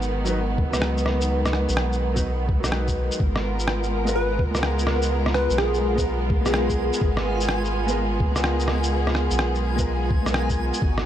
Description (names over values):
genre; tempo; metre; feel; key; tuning
future garage; 126 BPM; 4/4; swing 66% on 16ths; G# dorian; A4 = 439 Hz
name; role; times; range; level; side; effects
felt-muted upright piano; accompaniment; 0.0-10.8 s; F#3 to B4; -29 LUFS; equal; sidechain pumping, analog delay
rich studio string section; sustained chords; 0.0-11.1 s; D#3 to A#4; -27 LUFS; right 1 dB; sidechain pumping
soft dub sub bass; bass; 0.0-11.1 s; G#1 to C#2; -25 LUFS; equal; sidechain pumping
electronic shaker and rim click; drums; 0.0-11.0 s; none; -28 LUFS; equal; studio reverb
electronic kick drum; drums; 0.6-10.9 s; none; -24 LUFS; equal; studio reverb
backwards swelling texture; texture; 4.0-11.1 s; G#5; -36 LUFS; right 1 dB; built-in reverb
plucky unison lead; melody; 4.2-7.1 s; G#4 to B4; -27 LUFS; left 1 dB; tape echo
room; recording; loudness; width
light reverb; none; -20 LUFS; side -11 dB against mid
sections
0.0-11.1 A section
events
none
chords
0.0 B/G#; 3.2 G#m69